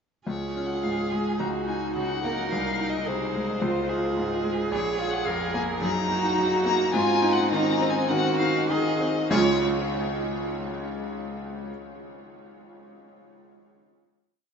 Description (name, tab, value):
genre	quick classical-period movement for piano quartet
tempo	96-111 BPM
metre	4/4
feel	rubato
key	Db major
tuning	A4 = 442 Hz
part	rich violin	melody	0.3-9.6 s	C5 to Bb5	-30 LUFS	left 4 dB	none
part	warm cello	second line	0.3-9.6 s	Ab3 to Bb4	-29 LUFS	right 4 dB	none
part	bright concert grand piano	accompaniment	0.3-11.7 s	Bb1 to F5	-28 LUFS	left 2 dB	none
part	warm viola	accompaniment	0.3-9.6 s	C4 to Ab4	-31 LUFS	right 2 dB	none
room	wet huge ambient reverb, RT60 8.2 s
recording	in a vast, echoing space, nothing above 7.6 kHz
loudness	-23 LUFS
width	side -6 dB against mid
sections	0.3-9.3 A section; 9.3-11.7 final chord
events	slowing down 3.6-9.3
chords	0.3 Db; 1.4 Ebm7/Db; 2.5 Ab/C; 3.6 Db; 4.7 Bb5; 5.8 Ebm/Gb; 6.9 Ab7; 9.3 Db